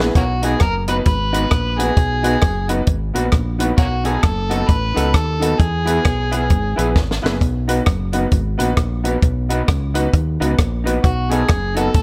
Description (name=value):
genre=ska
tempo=132 BPM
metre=4/4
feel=swing 61% on 8ths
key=B major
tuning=A4 = 440 Hz
part: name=electric guitar at the edge of break-up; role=accompaniment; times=0.0-11.9 s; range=D#4 to B4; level=-28 LUFS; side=equal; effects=slapback echo
part: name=warm upright piano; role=stabs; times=0.0-11.9 s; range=B3 to B4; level=-26 LUFS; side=equal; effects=none
part: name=fingered electric bass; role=bass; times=0.0-12.0 s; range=F#1 to E2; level=-23 LUFS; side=equal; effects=none
part: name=compact cocktail drum kit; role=drums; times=0.0-12.0 s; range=hi-hat, kick drum, rim click, snare drum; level=-20 LUFS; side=equal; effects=none
part: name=overdriven harmonica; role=melody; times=0.2-7.0, 11.0-12.0 s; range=A#3 to B4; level=-24 LUFS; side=equal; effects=slapback echo
room=studio reverb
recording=none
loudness=-18 LUFS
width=mono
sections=0.2-12.0 A section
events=drum fill 0.0, 7.0-7.4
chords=0.2 B; 3.8 B7; 5.6 E; 7.4 B; 11.0 B7